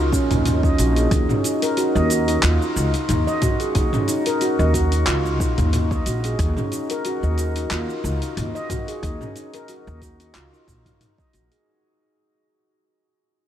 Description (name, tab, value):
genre	organic downtempo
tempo	91 BPM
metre	4/4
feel	swing 55% on 16ths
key	Eb minor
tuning	A4 = 442 Hz
part	handpan	arpeggios	0.0-11.7 s	Db4 to Eb5	-22 LUFS	equal	analog delay
part	upright bass	bass	0.0-11.5 s	Bb1 to Eb2	-21 LUFS	equal	none
part	deep house drum kit	drums	0.1-11.6 s	cabasa, handclaps, hi-hat, toms	-26 LUFS	equal	none
part	electronic kick drum	drums	0.1-11.3 s	none	-23 LUFS	equal	none
room	moderate huge ambient reverb, RT60 8.4 s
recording	dreamy mix soaked in reverb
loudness	-18 LUFS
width	side -10 dB against mid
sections	0.0-11.7 A section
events	fade-out 4.6-11.7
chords	0.0 Ebm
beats	0.46 | 1.11 1.77 2.43 3.09 | 3.75 4.41 5.07 5.73 | 6.39 7.05 7.71 8.37 | 9.03 9.69 10.35 11.01